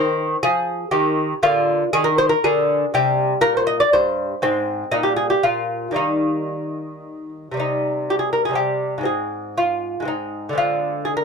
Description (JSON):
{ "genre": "classical, baroque-style dance for lute", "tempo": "121 BPM", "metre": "3/4", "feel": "rubato", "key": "Eb major, C minor from 7.6 s", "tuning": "A4 = 440 Hz", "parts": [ { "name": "lute", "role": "solo", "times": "0.0-11.2 s", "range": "G2 to Eb5", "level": "-18 LUFS", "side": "equal", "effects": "none" } ], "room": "light reverb", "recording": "close, detailed microphones", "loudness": "-18 LUFS", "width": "side -5 dB against mid", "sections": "0.0-7.6 A section; 7.6-11.2 A section", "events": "none", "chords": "0.0 Cm/Eb; 1.4 Bb/D; 2.9 C5; 4.4 N.C.; 4.9 Ebadd11/Bb; 5.5 N.C.; 6.0 Eb; 7.6 Cm; 9.1 Ab; 10.6 Dm7b5" }